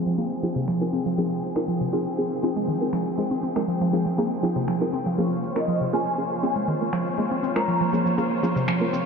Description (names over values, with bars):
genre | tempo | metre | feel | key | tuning
afro house | 120 BPM | 4/4 | straight | F minor | A4 = 439 Hz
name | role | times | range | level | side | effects
rich studio string section | sustained chords | 0.0-9.1 s | F3 to G5 | -30 LUFS | left 1 dB | low-pass filter
mallet-like synth pluck | arpeggios | 0.0-9.1 s | C3 to F4 | -25 LUFS | equal | chorus, diffuse ambient delay
deep mellow chord stab | stabs | 0.0-8.9 s | Bb3 to Bb4 | -28 LUFS | right 1 dB | chorus, diffuse ambient delay
downlifter | sound effects | 0.0-1.2 s | none | barely audible | none | none
electronic shaker and finger snaps | drums | 0.1-9.0 s | none | -38 LUFS | left 1 dB | overdrive, low-pass filter on hats, low-pass filter on perc, low-pass filter on snare, low-pass filter on room
expressive synth lead | melody | 5.6-7.9 s | Eb5 to Bb5 | -28 LUFS | left 1 dB | ensemble chorus, cassette tape, diffuse ambient delay
room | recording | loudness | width
wet cathedral reverb, RT60 6.2 s | dreamy mix soaked in reverb, low-pass filter | -22 LUFS | side -5 dB against mid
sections
0.0-9.1 A section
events
filter sweep on synth pluck 0.0-9.1; filter sweep on string section 0.0-9.1; filter sweep 0.0-9.1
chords
0.0 Fm7; 5.2 Bbm7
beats
0.18 0.68 | 1.18 1.68 2.18 2.68 | 3.18 3.68 4.18 4.68 | 5.18 5.68 6.18 6.68 | 7.18 7.68 8.18 8.68